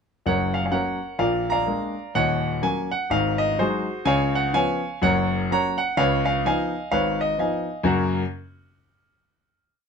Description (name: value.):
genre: jazz, stride piano.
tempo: 126 BPM.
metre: 4/4.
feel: swing 60% on 8ths.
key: F# major.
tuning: A4 = 440 Hz.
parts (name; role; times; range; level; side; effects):
clear grand piano; solo; 0.3-8.2 s; D#1 to A#5; -21 LUFS; equal; none.
room: light reverb.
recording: close, detailed microphones.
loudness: -21 LUFS.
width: side -6 dB against mid.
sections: 0.3-7.9 A section; 7.9-9.8 final chord.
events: none.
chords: 0.3 F#; 1.2 A#7; 2.2 D#m7; 3.1 G#7; 4.1 C#7; 5.0 F#; 6.0 C#9; 7.9 F#.